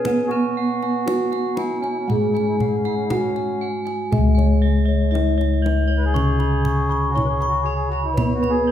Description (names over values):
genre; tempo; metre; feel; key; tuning
Javanese gamelan; 59 BPM; 4/4; straight; C# slendro; A4 = 440 Hz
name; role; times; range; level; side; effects
gamelan-type bronze metallophone; melody; 0.0-8.7 s; B3-25c to C#5; -25 LUFS; right 1 dB; none
mellow accordion; second line; 0.0-8.7 s; C#4 to B4-25c; -28 LUFS; left 2 dB; none
gamelan-type bronze metallophone; accompaniment; 0.0-8.7 s; C#3 to B3-25c; -24 LUFS; right 1 dB; none
gamelan-type bossed gongs; arpeggios; 0.0-8.7 s; B4-25c to C#6; -29 LUFS; left 2 dB; none
gamelan-type bronze metallophone; arpeggios; 0.0-8.7 s; B4-25c to C#6; -28 LUFS; right 2 dB; none
gamelan-type bossed gongs; bass; 0.0-8.7 s; C#2 to B4-25c; -22 LUFS; left 1 dB; none
kendang; percussion; 0.1-8.6 s; none; -27 LUFS; left 1 dB; none
room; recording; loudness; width
wet recital hall reverb, RT60 1.4 s; recorded in a church or concert hall; -18 LUFS; side -10 dB against mid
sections
0.0-4.1 A section; 4.1-8.7 A section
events
none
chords
none